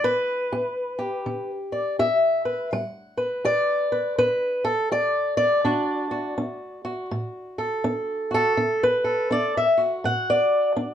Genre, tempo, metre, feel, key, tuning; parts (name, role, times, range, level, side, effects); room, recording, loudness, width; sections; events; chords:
blues; 82 BPM; 4/4; swing 63% on 8ths; D major; A4 = 440 Hz
fingerpicked swing-style acoustic guitar; solo; 0.0-10.9 s; A2 to F#5; -21 LUFS; equal
wet studio ambience, RT60 0.5 s; heard from further back in the room; -21 LUFS; side -9 dB against mid
0.0-10.9 A section
steel-string acoustic guitar solo 0.0-10.9
0.0 G; 5.6 D